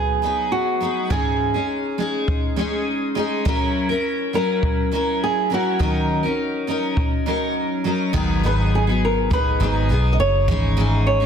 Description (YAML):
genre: acoustic pop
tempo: 102 BPM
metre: 4/4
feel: straight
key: G# minor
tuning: A4 = 441 Hz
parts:
  - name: flamenco guitar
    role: melody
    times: 0.0-11.3 s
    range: F#4 to D#5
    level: -23 LUFS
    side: right 2 dB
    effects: none
  - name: picked steel-string acoustic guitar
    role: accompaniment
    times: 0.0-11.3 s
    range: G#2 to A#4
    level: -21 LUFS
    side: left 1 dB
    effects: double-tracked left and right
  - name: jazz brush drum kit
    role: drums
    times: 1.1-10.6 s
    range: crash cymbal, kick drum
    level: -24 LUFS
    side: equal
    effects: none
  - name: vintage muted fingered electric bass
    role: bass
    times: 8.1-11.3 s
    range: F#1 to B1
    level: -20 LUFS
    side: equal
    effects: none
room: light reverb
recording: dense, heavily limited modern master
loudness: -18 LUFS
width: side -7 dB against mid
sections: 0.0-8.1 A section; 8.1-11.3 B section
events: none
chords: 0.0 G#m7; 1.1 C#madd9/G#; 3.5 F#7; 5.8 D#m7; 8.1 G#m7; 10.5 C#madd9/G#